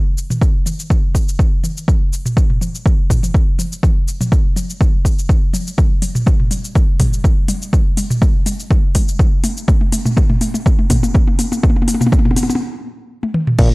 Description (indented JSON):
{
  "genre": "afro house",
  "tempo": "123 BPM",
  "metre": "4/4",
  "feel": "swing 54% on 16ths",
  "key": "unclear",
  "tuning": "A4 = 435 Hz",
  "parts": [
    { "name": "afro-pop drum kit", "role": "drums", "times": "0.2-13.7 s", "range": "crash cymbal, hi-hat, shaker, toms", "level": "-20 LUFS", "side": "equal", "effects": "small room ambience" },
    { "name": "electronic kick drum", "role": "drums", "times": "0.4-13.7 s", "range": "none", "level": "-13 LUFS", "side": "equal", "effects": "overdrive, small room ambience" },
    { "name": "smooth synth bass", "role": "bass", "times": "13.6-13.7 s", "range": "Bb1", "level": "-13 LUFS", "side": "equal", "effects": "tube saturation, sidechain pumping" }
  ],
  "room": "light reverb",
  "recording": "dry, gritty hardware recording, transformer saturation, cassette tape",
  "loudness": "-13 LUFS",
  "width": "side -24 dB against mid",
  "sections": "0.0-13.6 A section",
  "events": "build-up 0.0-13.6; drum fill 0.0-12.6, 13.2-13.6; stop 12.6-13.6",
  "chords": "none",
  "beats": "0.42 0.90 1.39 | 1.88 2.37 2.85 3.34 | 3.83 4.32 4.81 5.29 | 5.78 6.27 6.76 7.25 | 7.73 8.22 8.71 9.20 | 9.69 10.17 10.66 11.15 | 11.64 12.12 12.61 13.10 | 13.59"
}